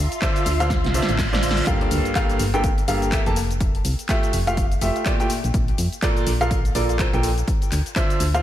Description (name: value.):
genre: piano house.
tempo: 124 BPM.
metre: 4/4.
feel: swing 59% on 16ths.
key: unclear.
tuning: A4 = 440 Hz.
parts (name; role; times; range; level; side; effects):
analog string pad; sustained chords; 0.0-1.6 s; F4 to C6; -29 LUFS; equal; ensemble chorus, sidechain pumping.
solid FM bass; bass; 0.0-8.4 s; F1 to F2; -23 LUFS; equal; sidechain pumping.
house drum kit; drums; 0.1-8.4 s; handclaps, hi-hat, shaker, snare drum; -28 LUFS; left 1 dB; none.
bright upright piano; riff; 0.2-8.4 s; G2 to A5; -24 LUFS; equal; sidechain pumping, ping-pong delay.
electronic kick drum; drums; 0.2-8.1 s; none; -23 LUFS; equal; none.
reverse cymbal and impact; sound effects; 0.8-3.6 s; none; -31 LUFS; equal; none.
room: light reverb.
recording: none.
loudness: -18 LUFS.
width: side -12 dB against mid.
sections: 0.0-1.7 A section; 1.7-8.4 B section.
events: drum fill 0.7-1.7; reverse cymbal 0.8-1.7; drop 1.7-8.4; impact 1.7-3.6.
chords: 0.0 Dm9; 1.7 Gm9; 3.4 Fmaj9; 5.3 Bbmaj7; 7.5 Dm9.